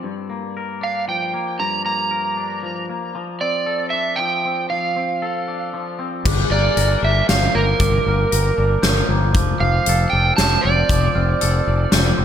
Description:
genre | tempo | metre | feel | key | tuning
post-rock | 116 BPM | 3/4 | straight | G minor | A4 = 440 Hz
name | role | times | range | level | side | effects
twangy electric guitar | arpeggios | 0.0-12.2 s | G2 to Bb4 | -26 LUFS | left 4 dB | digital delay
overdriven slide guitar | melody | 0.8-12.1 s | Bb4 to Bb5 | -21 LUFS | right 4 dB | digital delay
glockenspiel with soft plastic mallets | arpeggios | 6.3-12.2 s | D6 to G6 | -27 LUFS | right 5 dB | digital delay
growling fingered electric bass | bass | 6.3-12.2 s | F1 to G1 | -19 LUFS | left 1 dB | overdrive
huge arena drum kit | drums | 6.3-12.0 s | crash cymbal, hi-hat, kick drum, snare drum | -20 LUFS | left 1 dB | none
room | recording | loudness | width
light reverb | none | -17 LUFS | side -9 dB against mid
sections
0.0-6.2 A section; 6.2-12.2 A section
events
none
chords
0.0 Gm7; 3.1 Dm7/F; 6.2 Gm7; 9.3 Dm7/F

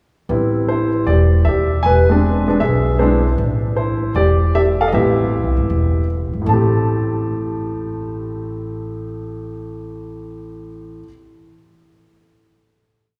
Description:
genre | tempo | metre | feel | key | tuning
jazz piano trio | 156 BPM | 4/4 | swing 66% on 8ths | A minor | A4 = 439 Hz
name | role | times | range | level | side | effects
warm concert grand piano | melody | 0.3-11.1 s | A2 to A5 | -21 LUFS | equal | none
upright bass | bass | 0.3-11.0 s | E1 to D#2 | -21 LUFS | equal | none
room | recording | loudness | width
wet church reverb, RT60 3.3 s | recorded in a church or concert hall, small room ambience | -17 LUFS | mono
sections
0.3-6.5 A section; 6.5-9.6 final chord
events
none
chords
0.3 Am7; 1.8 E7b13; 3.4 Am7

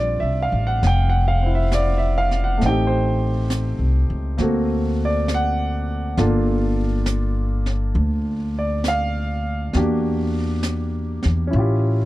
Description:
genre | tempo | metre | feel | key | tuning
jazz | 67 BPM | 4/4 | swing 68% on 8ths | unclear | A4 = 441 Hz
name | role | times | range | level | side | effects
warm concert grand piano | accompaniment | 0.0-12.1 s | G3 to G5 | -22 LUFS | right 1 dB | none
upright bass | bass | 0.0-12.1 s | F1 to E2 | -20 LUFS | equal | none
jazz brush drum kit | drums | 0.8-12.1 s | brushed snare drum, hi-hat, snare drum | -30 LUFS | right 1 dB | none
room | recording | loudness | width
little or no reverb | dry, close 1970s-style studio recording | -18 LUFS | side -16 dB against mid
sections
0.0-12.1 A section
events
none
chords
0.0 Bb69 (rootless); 2.6 Am7b5; 4.4 D7b13; 6.2 Gm7; 9.8 Em7b5; 11.5 A7b13

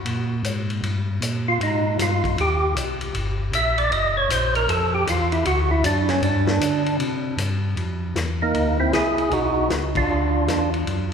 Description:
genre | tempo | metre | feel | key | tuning
soul jazz organ trio | 155 BPM | 4/4 | swing 64% on 8ths | unclear | A4 = 441 Hz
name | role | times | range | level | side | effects
mellow tonewheel organ | bass | 0.1-11.1 s | Gb1 to D3 | -24 LUFS | left 1 dB | slow rotary speaker
vintage drum kit | drums | 0.1-11.0 s | hi-hat, kick drum, ride cymbal, snare drum | -29 LUFS | left 2 dB | none
percussive tonewheel organ | melody | 1.5-10.7 s | Bb3 to E5 | -21 LUFS | right 1 dB | slow rotary speaker
room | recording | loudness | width
wet church reverb, RT60 3.0 s | recorded in a church or concert hall | -19 LUFS | side -6 dB against mid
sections
0.0-7.8 A section; 7.8-11.1 B section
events
tonewheel organ solo 0.0-7.8; band accent 9.9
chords
0.1 Absus2; 0.8 Gm7; 1.6 Abmaj7; 3.1 Gm; 3.9 Gb; 4.7 Fmaj9; 5.5 D; 6.2 G5; 7.0 C5; 7.8 F5; 9.3 Badd9; 10.1 Dmadd9

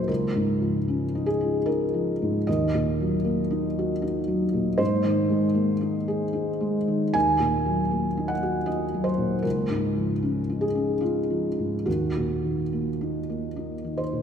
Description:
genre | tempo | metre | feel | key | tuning
neoclassical minimalist piano | 76 BPM | 3/4 | uneven beats, rubato | Eb dorian | A4 = 440 Hz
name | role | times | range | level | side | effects
felt-muted upright piano | solo | 0.0-14.2 s | Db2 to Ab5 | -23 LUFS | equal | none
room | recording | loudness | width
wet church reverb, RT60 3.1 s | recorded in a church or concert hall | -23 LUFS | side -8 dB against mid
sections
0.0-14.2 A section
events
none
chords
0.1 Dbadd9; 2.5 Ebm; 4.8 Abadd9; 7.1 Ebm; 9.4 Dbadd9; 11.9 Ebm

